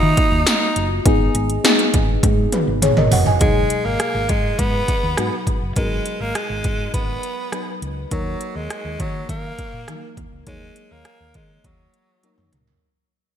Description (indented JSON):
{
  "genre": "1980s-style pop",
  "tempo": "102 BPM",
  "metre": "4/4",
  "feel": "straight",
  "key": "G# minor",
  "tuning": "A4 = 440 Hz",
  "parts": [
    { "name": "raspy tenor saxophone", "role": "melody", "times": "0.0-12.5 s", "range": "F#3 to D#4", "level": "-24 LUFS", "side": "equal", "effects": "ping-pong delay" },
    { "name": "mellow FM electric piano", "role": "accompaniment", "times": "0.0-12.8 s", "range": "B2 to G#5", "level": "-23 LUFS", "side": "left 1 dB", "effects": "chorus, phaser" },
    { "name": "hollow-body short-scale fingered electric bass", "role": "bass", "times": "0.0-12.7 s", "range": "F#1 to D#3", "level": "-24 LUFS", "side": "equal", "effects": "none" },
    { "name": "80s electronic pad drums", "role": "drums", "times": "0.2-12.8 s", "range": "hi-hat, kick drum, rim click, snare drum, tambourine, toms", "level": "-20 LUFS", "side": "equal", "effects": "gated reverb on snare and toms, gated reverb" }
  ],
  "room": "moderate lush hall reverb, RT60 1.8 s",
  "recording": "bright 1980s-style digital production",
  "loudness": "-17 LUFS",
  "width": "side -9 dB against mid",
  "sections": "0.0-3.4 A section; 3.4-12.8 B section",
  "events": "drum fill 2.2-3.4, 12.2-12.8; fade-out 3.4-12.8",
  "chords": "0.0 D#m; 1.1 G#m; 8.1 D#m"
}